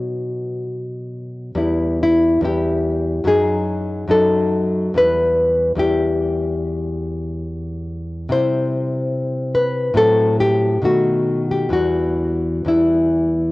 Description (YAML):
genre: romantic piece for solo classical guitar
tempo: 71 BPM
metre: 4/4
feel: uneven beats, rubato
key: E minor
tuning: A4 = 440 Hz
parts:
  - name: nylon-string guitar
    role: solo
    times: 0.0-13.5 s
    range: E2 to C5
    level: -16 LUFS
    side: left 1 dB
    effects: cassette tape
room: light reverb, studio ambience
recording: home recording on cassette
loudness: -16 LUFS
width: side -19 dB against mid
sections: 0.0-13.5 A section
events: none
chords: 0.0 B; 1.6 Em; 3.3 D#dim/F#; 5.0 Em; 8.3 C; 10.0 F#dim/A; 10.8 B7; 11.7 Em